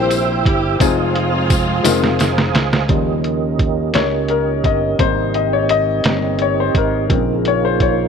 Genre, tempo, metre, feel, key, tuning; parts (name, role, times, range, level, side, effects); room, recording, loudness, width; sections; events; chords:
slow gospel; 57 BPM (dotted quarters); 6/8; straight; A4 = 443 Hz
warm studio string section; melody; 0.0-2.5 s; Ab3 to C5; -21 LUFS; equal; slapback echo
warm concert grand piano; accompaniment; 0.0-8.1 s; C3 to Eb5; -19 LUFS; left 13 dB
percussive tonewheel organ; sustained chords; 0.0-8.1 s; Bb3 to E6; -21 LUFS; right 15 dB; slow rotary speaker, chorus vibrato
fingered electric bass; bass; 0.0-8.1 s; F1 to Eb2; -22 LUFS; right 2 dB
lo-fi sampler-style drum kit; drums; 0.1-8.0 s; hi-hat, kick drum, snare drum; -18 LUFS; right 1 dB
tambourine; percussion; 0.1-2.5 s; -26 LUFS; left 12 dB
mellow French horn section; sustained chords; 2.9-8.1 s; Db3 to Bb4; -28 LUFS; left 14 dB
light reverb; 1960s-style stereo with parts hard left and right; -14 LUFS; side -6 dB against mid
0.0-2.9 A section; 2.9-8.1 B section
drum fill 1.8-2.9; grand piano solo 2.9-8.1
0.0 C; 0.8 Fm7; 2.9 Eb7; 5.0 Abmaj7; 7.1 Bbm7